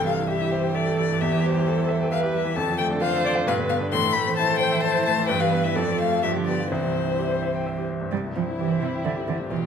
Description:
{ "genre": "quick classical-period movement for piano quartet", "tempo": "131 BPM", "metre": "3/4", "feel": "straight", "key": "C major", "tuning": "A4 = 440 Hz", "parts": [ { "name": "warm violin", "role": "melody", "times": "0.0-9.7 s", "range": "E4 to C6", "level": "-26 LUFS", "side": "left 8 dB", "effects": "none" }, { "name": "rich cello", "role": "second line", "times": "0.0-9.6 s", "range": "B2 to G3", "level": "-27 LUFS", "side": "right 6 dB", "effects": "none" }, { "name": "bright grand piano", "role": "accompaniment", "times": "0.0-9.7 s", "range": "B1 to G5", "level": "-26 LUFS", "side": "left 1 dB", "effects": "none" }, { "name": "dark viola", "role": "accompaniment", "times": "0.0-9.7 s", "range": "E4 to C5", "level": "-29 LUFS", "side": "right 2 dB", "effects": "none" } ], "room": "wet recital hall reverb, RT60 1.3 s", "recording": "minimal, uncompressed stereo recording", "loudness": "-21 LUFS", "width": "side -7 dB against mid", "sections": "0.0-8.1 A section; 8.1-9.7 A section", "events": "none", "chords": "0.0 C; 1.2 C/E; 2.6 Dm/F; 3.5 G7; 3.9 Am; 5.3 Em/G; 5.8 Dm/F; 6.2 G7; 6.7 C" }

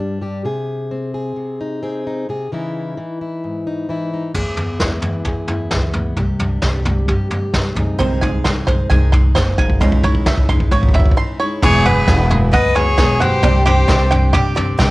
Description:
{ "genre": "indie folk with a building arrangement", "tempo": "132 BPM", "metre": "4/4", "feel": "straight", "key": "unclear", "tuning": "A4 = 440 Hz", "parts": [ { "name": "fingerpicked plugged-in steel-string acoustic guitar", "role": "accompaniment", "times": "0.0-8.0 s", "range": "E2 to G#4", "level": "-23 LUFS", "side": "left 1 dB", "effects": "plate reverb" }, { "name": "upright bass", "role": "bass", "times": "4.3-14.9 s", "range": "E1 to C3", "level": "-18 LUFS", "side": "equal", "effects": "none" }, { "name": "vintage brush drum kit", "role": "drums", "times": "4.3-14.9 s", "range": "crash cymbal, kick drum, snare drum, toms", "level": "-17 LUFS", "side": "equal", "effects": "none" }, { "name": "picked steel-string acoustic guitar", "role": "accompaniment", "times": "8.0-14.9 s", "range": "E2 to G#4", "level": "-24 LUFS", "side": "left 3 dB", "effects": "plate reverb" }, { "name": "warm upright piano", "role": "accompaniment", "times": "8.0-14.9 s", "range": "B#1 to D#5", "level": "-27 LUFS", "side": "right 4 dB", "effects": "none" }, { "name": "bluegrass banjo", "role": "arpeggios", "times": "8.0-14.9 s", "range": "G4 to B#5", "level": "-21 LUFS", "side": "right 3 dB", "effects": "plate reverb" }, { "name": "bright cello", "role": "melody", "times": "11.6-14.3 s", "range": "B4 to D#5", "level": "-19 LUFS", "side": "equal", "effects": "cassette tape, plate reverb" }, { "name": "warm fiddle", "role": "second line", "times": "11.6-14.3 s", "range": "G4 to B4", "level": "-20 LUFS", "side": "left 2 dB", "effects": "plate reverb" } ], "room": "light reverb", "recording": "home recording on cassette", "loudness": "-14 LUFS", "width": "side -20 dB against mid", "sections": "0.0-4.3 A section; 4.3-11.6 B section; 11.6-14.9 C section", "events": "build-up 4.3-11.6; drum fill 4.3-11.2; break 11.2-11.6", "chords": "0.5 G#/B#; 2.5 C#madd9; 4.3 E; 6.2 Csus2; 7.8 G#/B#; 9.8 C#madd9; 11.6 Eadd9; 13.4 Csus2" }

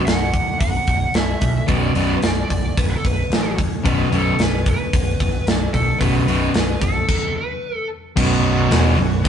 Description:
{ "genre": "hard rock", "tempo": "111 BPM", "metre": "4/4", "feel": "straight", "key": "B minor", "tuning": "A4 = 440 Hz", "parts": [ { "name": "high-gain lead guitar", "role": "melody", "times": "0.1-7.9 s", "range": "A4 to F#5", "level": "-25 LUFS", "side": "equal", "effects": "distortion" }, { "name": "overdriven picked electric bass", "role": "bass", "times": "0.1-9.3 s", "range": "B0 to B1", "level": "-22 LUFS", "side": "equal", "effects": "none" }, { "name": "tight metal drum kit", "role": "drums", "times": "0.1-9.3 s", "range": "crash cymbal, hi-hat, kick drum, snare drum", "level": "-20 LUFS", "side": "equal", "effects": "none" }, { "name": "crunchy overdriven guitar", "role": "riff", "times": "1.7-9.3 s", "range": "B1 to E3", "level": "-20 LUFS", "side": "left 3 dB", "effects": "none" }, { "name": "distorted electric guitar", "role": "riff", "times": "1.7-9.3 s", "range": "B1 to E3", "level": "-24 LUFS", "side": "right 6 dB", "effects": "distortion" }, { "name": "overdriven tonewheel organ", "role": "sustained chords", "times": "8.2-9.3 s", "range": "B3 to C#5", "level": "-31 LUFS", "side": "right 2 dB", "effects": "none" }, { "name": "distorted electric guitar", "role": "riff", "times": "8.2-9.3 s", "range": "B1 to E3", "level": "-28 LUFS", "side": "right 3 dB", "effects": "none" } ], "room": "moderate stone room reverb, RT60 1.4 s", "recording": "rough rehearsal-room recording, nothing above 10.6 kHz", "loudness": "-16 LUFS", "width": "side -8 dB against mid", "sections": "0.0-8.2 A section; 8.2-9.3 B section", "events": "stop 7.1-8.2", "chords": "0.0 B5" }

